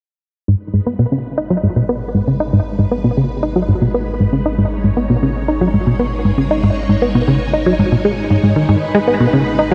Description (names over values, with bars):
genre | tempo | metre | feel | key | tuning
ambient, sequencer-driven space music | 117 BPM | 4/4 | straight | G# minor | A4 = 441 Hz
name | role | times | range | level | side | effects
string machine, full ensemble | sustained chords | 0.5-9.7 s | G#3 to C#5 | -26 LUFS | equal | ensemble chorus
plucky analog bass | riff | 0.5-9.7 s | G#2 to D#4 | -16 LUFS | equal | tape echo
warm sub bass | bass | 0.5-9.7 s | G#1 | -28 LUFS | equal | none
room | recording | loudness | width
moderate lush hall reverb, RT60 2.5 s | dark, warm production | -15 LUFS | mono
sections
0.5-9.7 A section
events
fade-in on string machine 0.5-9.7; fade-in on sub bass 0.5-9.7; filter sweep on analog synth bass 0.5-9.7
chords
0.5 G#m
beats
| 0.48 0.99 1.51 2.02 | 2.53 3.05 3.56 4.07 | 4.58 5.10 5.61 6.12 | 6.64 7.15 7.66 8.18 | 8.69 9.20 9.71